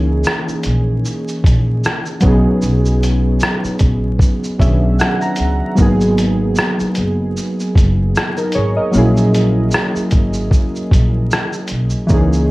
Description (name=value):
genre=lo-fi hip hop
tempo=76 BPM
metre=4/4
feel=swing 56% on 16ths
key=unclear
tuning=A4 = 441 Hz
part: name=warbly lo-fi synth keys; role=accompaniment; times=0.0-12.5 s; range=D#3 to A#5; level=-17 LUFS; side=equal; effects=chorus, cassette tape, low-pass filter
part: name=upright bass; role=bass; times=0.0-12.5 s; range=F#1 to C#2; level=-17 LUFS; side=equal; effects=none
part: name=lo-fi sampler-style drum kit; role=drums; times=0.2-12.5 s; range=hi-hat, kick drum, rim click, shaker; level=-16 LUFS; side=equal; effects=none
room=moderate studio reverb, RT60 0.6 s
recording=vinyl crackle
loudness=-13 LUFS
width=side -20 dB against mid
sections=0.0-12.5 A section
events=synth keys fill 4.2-5.8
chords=0.0 C#m69; 2.2 B69; 5.8 G#m9; 8.9 F#9